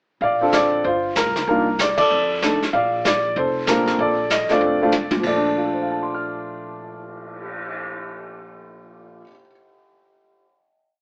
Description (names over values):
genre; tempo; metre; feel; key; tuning
jazz piano trio; 191 BPM; 4/4; swing 62% on 8ths; Bb major; A4 = 440 Hz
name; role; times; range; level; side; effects
warm upright piano; melody; 0.2-9.5 s; Bb2 to F6; -22 LUFS; equal; none
upright bass; bass; 0.2-9.2 s; F1 to F2; -37 LUFS; equal; none
vintage brush drum kit; drums; 0.2-7.7 s; brushed snare drum, crash cymbal, cymbal swell, hi-hat, kick drum, ride cymbal, snare drum, toms; -28 LUFS; equal; none
room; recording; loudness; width
moderate club reverb, RT60 0.7 s; heard from further back in the room, AM radio sound; -20 LUFS; mono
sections
0.2-5.2 A section; 5.2-7.8 final chord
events
band accent 1.9; drum fill 4.9-5.2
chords
0.2 Bbmaj7; 0.8 Gm7; 1.5 Cm11; 2.1 F6; 2.7 Bbmaj7